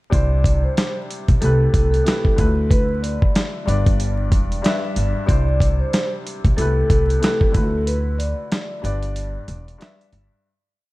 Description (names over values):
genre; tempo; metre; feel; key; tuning
hip hop, boom-bap hip-hop; 93 BPM; 4/4; swing 59% on 16ths; unclear; A4 = 439 Hz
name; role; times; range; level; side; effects
vibraphone with soft mallets; melody; 0.1-10.4 s; A4 to D5; -25 LUFS; equal; high-pass filter, low-pass filter
warm baby grand piano; accompaniment; 0.1-10.5 s; G2 to E5; -27 LUFS; left 2 dB; high-pass filter, low-pass filter
upright bass; bass; 0.1-10.3 s; E1 to D2; -20 LUFS; equal; none
dusty soul sampler-style drum kit; drums; 0.1-10.3 s; hi-hat, kick drum, snare drum; -19 LUFS; equal; none
room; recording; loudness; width
studio reverb; vinyl crackle; -16 LUFS; side -20 dB against mid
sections
0.1-10.4 hook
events
break 7.9-10.4; fade-out 7.9-10.4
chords
0.1 C; 1.4 Am7/C; 2.4 D6; 3.7 G; 5.3 C; 6.6 Am7/C; 7.5 D6; 8.8 G